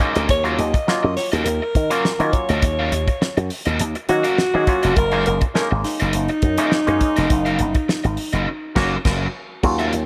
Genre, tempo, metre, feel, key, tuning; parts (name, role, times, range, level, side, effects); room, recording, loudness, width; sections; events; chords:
funk; 103 BPM; 4/4; straight; A4 = 440 Hz
crunchy overdriven guitar; accompaniment; 0.0-10.0 s; Db4 to F5; -28 LUFS; equal; spring reverb
auto-wah clav; stabs; 0.0-10.1 s; Gb3 to Ab4; -27 LUFS; equal
damped 70s drum kit; drums; 0.0-10.1 s; crash cymbal, hi-hat, kick drum, snare drum; -24 LUFS; equal
slap bass with an envelope filter; bass; 0.2-10.1 s; F1 to Eb3; -24 LUFS; equal
breathy alto saxophone; melody; 0.3-9.0 s; Eb4 to Eb5; -24 LUFS; equal
light reverb; -20 LUFS; mono
0.0-9.6 A section
band accent 8.5-9.6
0.0 Gb6